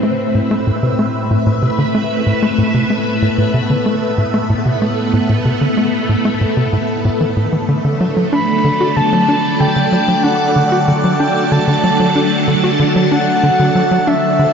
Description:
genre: ambient, sequencer-driven space music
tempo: 94 BPM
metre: 4/4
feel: straight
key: A dorian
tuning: A4 = 440 Hz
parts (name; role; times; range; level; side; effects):
- phased string machine; sustained chords; 0.0-14.5 s; A2 to A5; -16 LUFS; equal; ensemble chorus, phaser, shimmer reverb
- tight sequencer bass; riff; 0.0-14.5 s; A2 to F#4; -16 LUFS; equal; shimmer reverb, tape echo
- breathy flute-like synth lead; melody; 8.3-14.5 s; E5 to B5; -17 LUFS; right 1 dB; chorus, tremolo, shimmer reverb, tape echo
room: wet huge ambient reverb, RT60 8.8 s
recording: cassette tape, nothing above 7.7 kHz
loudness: -12 LUFS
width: side -6 dB against mid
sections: 0.0-14.5 A section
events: none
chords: 0.0 Amadd9; 7.7 D

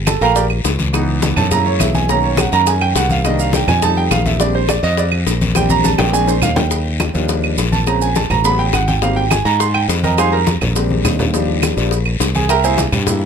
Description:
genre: Afro-Cuban jazz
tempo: 208 BPM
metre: 4/4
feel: straight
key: Eb major from 6.7 s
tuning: A4 = 440 Hz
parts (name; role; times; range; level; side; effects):
- modern bright fingered electric bass; bass; 0.0-13.3 s; G1 to Ab2; -18 LUFS; equal; none
- clear grand piano; accompaniment; 0.1-13.2 s; Db3 to C6; -17 LUFS; right 4 dB; none
- bongos; percussion; 0.1-13.3 s; none; -23 LUFS; left 9 dB; none
- claves; percussion; 0.1-13.1 s; none; -24 LUFS; right 7 dB; none
- congas; percussion; 0.1-13.3 s; none; -21 LUFS; left 1 dB; none
- guiro; percussion; 0.1-13.3 s; none; -26 LUFS; left 7 dB; none
- maracas; percussion; 0.1-13.2 s; none; -27 LUFS; right 8 dB; none
room: light reverb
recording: close, detailed microphones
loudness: -13 LUFS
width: side -7 dB against mid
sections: 0.0-6.7 A section; 6.7-13.3 A section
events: grand piano solo 0.0-13.3; drum fill 5.6-6.7, 10.9-11.3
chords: 0.0 Gm7; 0.9 Dbm7; 1.5 Gb7; 2.1 Bmaj7; 3.2 Cm7; 3.8 F7; 4.4 Bb69; 6.1 Bb7; 6.7 Ebmaj9; 7.9 Bbm7; 8.4 A13; 9.0 Abmaj9; 10.2 Fm7; 10.8 Bb13; 11.3 Ebmaj9; 12.5 C7b13

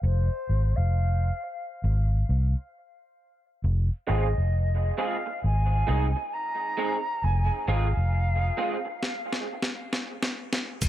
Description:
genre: dub reggae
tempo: 67 BPM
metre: 4/4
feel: swing 64% on 16ths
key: F minor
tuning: A4 = 440 Hz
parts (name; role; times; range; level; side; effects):
- mellow silver concert flute; melody; 0.0-9.0 s; C5 to Bb5; -32 LUFS; equal; low-pass filter, tape echo
- vintage muted fingered electric bass; bass; 0.0-10.9 s; F1 to C2; -23 LUFS; equal; none
- electric guitar through a small old amp; accompaniment; 4.1-8.9 s; Ab3 to Ab4; -32 LUFS; right 3 dB; ensemble chorus, low-pass filter, tape echo
- breakbeat sampler-style drum kit; drums; 9.0-10.9 s; crash cymbal, hi-hat, kick drum, snare drum; -29 LUFS; equal; none
- cabasa; percussion; 10.8-10.9 s; none; -33 LUFS; right 7 dB; none
room: digital ambience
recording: echo-heavy mix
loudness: -24 LUFS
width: side -13 dB against mid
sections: 0.0-10.8 A section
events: break 0.0-3.6; filter sweep 0.0-10.8; drum fill 9.0-10.8; stop 9.0-10.8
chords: 0.0 Fm; 1.8 Ab; 3.6 Fm; 5.4 Ab; 7.2 Fm; 9.0 N.C.

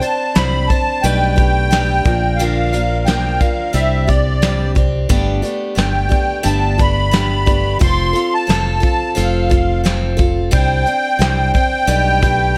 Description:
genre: folk rock and heartland rock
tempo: 88 BPM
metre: 4/4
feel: straight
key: G major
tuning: A4 = 440 Hz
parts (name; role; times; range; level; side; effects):
- musette accordion; melody; 0.0-12.6 s; D5 to C6; -21 LUFS; equal; none
- picked steel-string acoustic guitar; accompaniment; 0.0-12.6 s; G2 to C5; -23 LUFS; equal; none
- soft brush drum kit; drums; 0.0-12.4 s; hi-hat, kick drum, snare drum; -19 LUFS; equal; none
- fingered electric bass; bass; 0.4-12.6 s; F1 to C2; -20 LUFS; equal; none
room: light reverb, small room ambience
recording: none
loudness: -16 LUFS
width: mono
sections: 0.0-12.6 A section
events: none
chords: 0.0 Csus2; 1.0 Gadd9/B; 2.0 Bb; 3.7 Csus2; 5.1 Gadd9; 7.8 F; 10.5 Csus2; 11.9 Gadd9/B

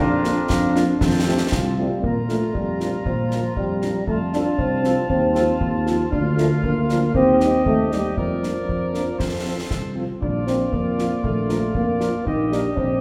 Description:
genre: military-style march for wind band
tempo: 117 BPM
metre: 2/4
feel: straight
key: Bb major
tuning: A4 = 440 Hz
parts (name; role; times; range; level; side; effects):
- mellow trumpet section; melody; 0.0-12.6 s; F4 to Bb4; -37 LUFS; equal; none
- clear woodwind section; second line; 0.0-13.0 s; C4 to Bb5; -32 LUFS; equal; none
- warm euphonium; second line; 0.0-13.0 s; F2 to Eb4; -24 LUFS; equal; none
- clear trombone section; sustained chords; 0.0-2.0 s; D4 to G4; -27 LUFS; equal; none
- dark tuba; bass; 0.0-13.0 s; Bb1 to Bb2; -27 LUFS; equal; none
- dark French horn section; accompaniment; 0.2-12.6 s; F3 to G4; -32 LUFS; equal; none
- concert snare drum and concert bass drum; drums; 0.2-13.0 s; none; -31 LUFS; equal; none
room: wet recital hall reverb, RT60 1.7 s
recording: recorded in a church or concert hall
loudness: -21 LUFS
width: mono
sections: 0.0-2.0 A section; 2.0-13.0 B section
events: none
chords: 0.0 Bb/F; 1.0 F; 2.0 Bb; 4.1 F; 5.1 F7/Eb; 6.1 Bb/D; 7.1 Cm/Eb; 8.2 Bb/F; 9.2 F; 10.2 Bb; 12.3 Eb/Bb

